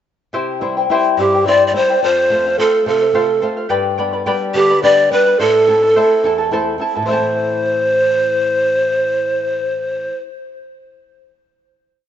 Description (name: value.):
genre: andean folk, Andean ensemble.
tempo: 71 BPM (dotted quarters).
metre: 6/8.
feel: straight.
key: A minor.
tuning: A4 = 438 Hz.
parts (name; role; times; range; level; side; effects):
charango; accompaniment; 0.3-10.6 s; E4 to B5; -19 LUFS; left 2 dB; none.
flamenco guitar; accompaniment; 0.3-10.3 s; E2 to F4; -25 LUFS; left 2 dB; none.
breathy hollow large pan pipes; melody; 1.2-10.2 s; G4 to D5; -14 LUFS; equal; none.
room: light reverb, studio reverb.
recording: rough home demo mix, nothing above 7.8 kHz.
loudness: -13 LUFS.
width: side -10 dB against mid.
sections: 0.3-7.1 A section; 7.1-10.4 final chord.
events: none.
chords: 0.3 C; 2.0 F; 3.7 G; 5.4 Am.